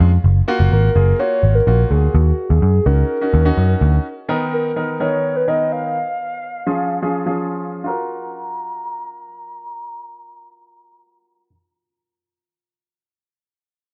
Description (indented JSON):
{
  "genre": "dance-pop",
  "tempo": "126 BPM",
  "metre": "4/4",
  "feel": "straight",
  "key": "F# major",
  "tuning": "A4 = 444 Hz",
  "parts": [
    { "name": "clear baby grand piano", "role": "accompaniment", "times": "0.0-11.5 s", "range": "D#3 to A#4", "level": "-25 LUFS", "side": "equal", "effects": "none" },
    { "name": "vintage muted picked electric bass", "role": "bass", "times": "0.0-4.0 s", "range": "F#1 to F#2", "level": "-15 LUFS", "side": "equal", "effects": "none" },
    { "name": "hollow clarinet-like synth lead", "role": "melody", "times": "0.7-11.5 s", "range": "F#4 to A#5", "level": "-24 LUFS", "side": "equal", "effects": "chorus, phaser, tape echo" }
  ],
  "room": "light reverb, studio reverb",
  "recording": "echo-heavy mix, low-pass filter, nothing above 10.5 kHz",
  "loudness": "-18 LUFS",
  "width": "mono",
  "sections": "0.2-7.9 A section; 7.9-11.7 B section",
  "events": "filter sweep 0.2-7.9",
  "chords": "0.2 F#maj7; 2.1 D#m7; 4.0 Bmaj7/D#; 6.0 C#/E#; 7.9 F#maj7",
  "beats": "| 0.24 0.72 1.19 1.67 | 2.15 2.62 3.10 3.57 | 4.05 4.53 5.00 5.48 | 5.96 6.43 6.91 7.38 | 7.86 8.34 8.81 9.29 | 9.77 10.24 10.72 11.19"
}